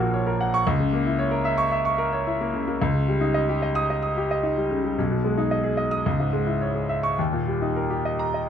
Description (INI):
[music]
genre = classical, virtuoso piano study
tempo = 111 BPM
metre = 4/4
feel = rubato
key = unclear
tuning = A4 = 441 Hz
[part]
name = clear concert grand piano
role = solo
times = 0.0-8.5 s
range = Bb1 to D#6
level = -21 LUFS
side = equal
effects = none
[sound]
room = moderate recital hall reverb, RT60 1.7 s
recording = close, detailed microphones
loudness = -21 LUFS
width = side -8 dB against mid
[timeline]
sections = 0.0-8.5 A section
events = none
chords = 0.0 Gb/Bb; 0.7 A#dim/C#; 2.8 D#7/C#; 5.0 G#m/B; 6.1 C#m; 7.2 D#